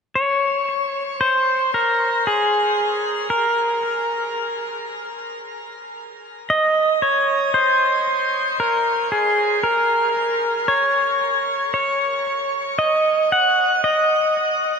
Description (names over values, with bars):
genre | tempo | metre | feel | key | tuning
ambient | 57 BPM | 3/4 | straight | Bb minor | A4 = 440 Hz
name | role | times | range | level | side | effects
pedal steel guitar | solo | 0.2-14.8 s | Ab4 to Gb5 | -17 LUFS | equal | ping-pong delay
room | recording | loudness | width
wet shimmer reverb, RT60 8.6 s | dark, warm production, nothing above 10.8 kHz | -17 LUFS | side -5 dB against mid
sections
0.2-14.8 A section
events
none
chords
none